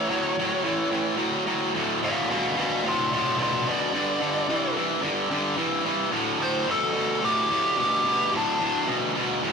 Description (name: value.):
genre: rock.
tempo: 109 BPM.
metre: 4/4.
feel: straight.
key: D minor.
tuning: A4 = 440 Hz.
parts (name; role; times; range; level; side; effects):
nasal lead guitar with a parked wah; melody; 0.0-8.9 s; D4 to F5; -26 LUFS; equal; overdrive.
tight distorted guitar; riff; 0.0-9.5 s; D2 to F#3; -24 LUFS; equal; distortion.
room: moderate stone room reverb, RT60 1.2 s.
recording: rough rehearsal-room recording, warm saturation.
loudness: -22 LUFS.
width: side -5 dB against mid.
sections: 0.0-1.7 A section; 1.7-9.5 B section.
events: lead electric guitar solo 1.7-9.5.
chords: 0.0 A; 1.7 Dm; 3.9 G5; 6.1 D5.